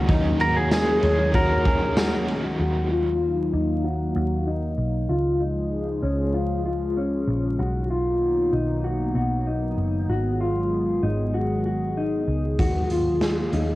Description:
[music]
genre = dream pop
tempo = 96 BPM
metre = 4/4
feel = straight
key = Eb minor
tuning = A4 = 440 Hz
[part]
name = biting overdriven guitar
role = accompaniment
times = 0.0-3.1 s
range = Eb3 to Bb4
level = -31 LUFS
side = right 2 dB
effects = tremolo, lush chorus, cassette tape
[part]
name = hollow soft pad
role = sustained chords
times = 0.0-13.8 s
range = Db3 to F5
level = -28 LUFS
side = equal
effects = chorus, low-pass filter, cassette tape
[part]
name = mellow electric guitar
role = arpeggios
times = 0.0-13.8 s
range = Db4 to Ab4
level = -26 LUFS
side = left 2 dB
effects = wide subtle chorus, low-pass filter, cassette tape, analog delay
[part]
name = vintage muted picked electric bass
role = bass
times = 0.0-13.8 s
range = F#1 to Eb2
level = -26 LUFS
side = equal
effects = none
[part]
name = raw garage drum kit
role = drums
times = 0.1-2.4, 12.6-13.7 s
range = hi-hat, kick drum, ride cymbal, snare drum, tambourine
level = -25 LUFS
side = equal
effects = cassette tape
[part]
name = pedal steel guitar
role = melody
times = 0.4-2.2 s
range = Ab4 to Bb4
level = -25 LUFS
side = right 1 dB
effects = cassette tape, analog delay
[part]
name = vibraphone with medium mallets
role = texture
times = 1.0-2.0 s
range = Db5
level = -29 LUFS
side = equal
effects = cassette tape, analog delay
[sound]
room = moderate booth ambience, RT60 0.2 s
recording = home recording on cassette, vinyl crackle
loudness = -21 LUFS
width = side -17 dB against mid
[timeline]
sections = 0.0-2.6 A section; 2.6-13.8 B section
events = filter sweep 2.6-13.8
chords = 0.0 Ebm7; 2.6 Ebmadd9; 5.1 Db; 7.6 Bmaj7; 10.1 Abm7; 12.6 Ebmadd9

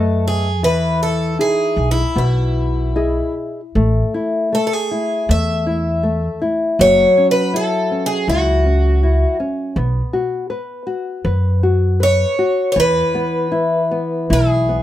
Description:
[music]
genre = fado-style ballad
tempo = 79 BPM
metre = 4/4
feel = rubato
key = E major, A major from 3.8 s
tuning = A4 = 440 Hz
[part]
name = picked twelve-string acoustic guitar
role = melody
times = 0.0-14.8 s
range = E4 to E5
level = -18 LUFS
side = equal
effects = none
[part]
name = nylon-string guitar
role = accompaniment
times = 0.0-14.8 s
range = B2 to D#5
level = -19 LUFS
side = left 2 dB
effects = none
[part]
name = upright bass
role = bass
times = 0.0-14.8 s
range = F#1 to F#2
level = -17 LUFS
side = equal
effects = none
[sound]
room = light reverb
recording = none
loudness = -15 LUFS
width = side -12 dB against mid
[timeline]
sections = 0.0-3.8 A section; 3.8-14.8 B section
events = none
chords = 0.0 B7; 0.6 Emaj7; 3.8 A5; 6.8 F#5; 9.8 B5; 12.8 E5

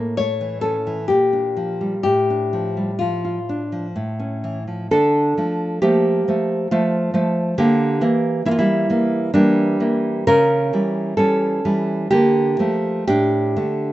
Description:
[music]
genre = romantic duo for nylon-string guitar and classical guitar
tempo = 61-69 BPM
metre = 3/4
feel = rubato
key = D minor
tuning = A4 = 440 Hz
[part]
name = nylon-string guitar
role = melody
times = 0.0-3.9 s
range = F4 to C#5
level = -20 LUFS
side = left 3 dB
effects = none
[part]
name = nylon-string guitar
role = accompaniment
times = 0.0-13.9 s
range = A2 to Bb4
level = -17 LUFS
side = right 1 dB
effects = none
[sound]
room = light reverb, small room ambience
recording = rough home demo mix, nothing above 7.8 kHz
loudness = -17 LUFS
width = side -15 dB against mid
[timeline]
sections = 0.0-4.9 A section; 4.9-13.9 B section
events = none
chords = 0.0 A; 1.1 Bb; 2.0 Dm/A; 3.9 A; 4.9 Dm; 7.6 Em7b5/D; 10.3 A7/C#; 12.1 Dm; 13.1 D5/A

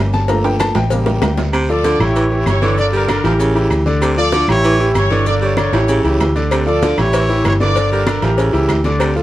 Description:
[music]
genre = latin, salsa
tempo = 193 BPM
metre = 4/4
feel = straight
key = unclear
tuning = A4 = 440 Hz
[part]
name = clear concert grand piano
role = accompaniment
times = 0.0-9.2 s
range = C#3 to Bb5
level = -18 LUFS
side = left 1 dB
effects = none
[part]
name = vintage muted fingered electric bass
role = bass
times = 0.0-9.2 s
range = G1 to D2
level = -17 LUFS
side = equal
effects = none
[part]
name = congas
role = percussion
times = 0.1-9.2 s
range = none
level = -24 LUFS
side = left 1 dB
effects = none
[part]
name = guiro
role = percussion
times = 0.1-9.2 s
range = none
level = -35 LUFS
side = right 3 dB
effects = none
[part]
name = maracas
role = percussion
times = 0.1-9.2 s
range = none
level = -39 LUFS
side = left 5 dB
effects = none
[part]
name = cowbell and bongos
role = percussion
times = 0.3-1.5, 6.5-9.2 s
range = none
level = -24 LUFS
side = left 4 dB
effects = none
[part]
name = timbales and agogo bells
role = percussion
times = 0.3-9.2 s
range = none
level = -24 LUFS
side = right 3 dB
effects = none
[part]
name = claves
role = percussion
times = 0.6-9.2 s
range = none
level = -32 LUFS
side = left 2 dB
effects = none
[part]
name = raspy baritone saxophone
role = second line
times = 1.5-9.2 s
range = C3 to G3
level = -20 LUFS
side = right 2 dB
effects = none
[part]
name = bright trumpet section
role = melody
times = 1.7-8.8 s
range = D4 to D5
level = -20 LUFS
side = right 1 dB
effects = none
[sound]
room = light reverb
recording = worn, warbling old tape, cassette tape, warbly pitch drift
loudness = -12 LUFS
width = side -14 dB against mid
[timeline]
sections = 0.0-1.5 A section; 1.5-9.2 B section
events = grand piano solo 0.0-1.5; drum fill 0.3-1.5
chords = 0.3 Gm7; 0.9 A7b9; 1.5 Dm7; 2.2 A7; 3.4 A7b9; 4.0 Dm7; 4.6 A7; 5.9 A7b9; 6.5 Dm7; 7.1 Gm7; 8.4 A7b9

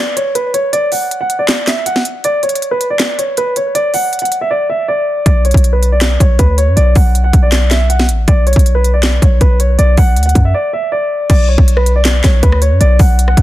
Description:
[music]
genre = hip hop, trap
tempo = 159 BPM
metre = 4/4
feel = half-time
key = B minor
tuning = A4 = 440 Hz
[part]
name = dark grand piano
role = melody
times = 0.0-13.4 s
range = B4 to F#5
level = -15 LUFS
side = equal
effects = low-pass filter, ping-pong delay
[part]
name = trap drum kit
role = drums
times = 0.2-13.4 s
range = crash cymbal, handclaps, hi-hat, kick drum, rim click, snare drum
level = -12 LUFS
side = equal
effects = none
[part]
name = warm 808-style bass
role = bass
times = 5.3-13.4 s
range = A1 to F#2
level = -11 LUFS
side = equal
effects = none
[sound]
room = little or no reverb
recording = dense, heavily limited modern master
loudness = -10 LUFS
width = side -15 dB against mid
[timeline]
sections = 0.0-11.3 A section; 11.3-13.4 B section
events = break 0.0-5.3, 10.5-11.3; drums muted 4.5-5.3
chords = 0.0 N.C.; 5.3 Bm

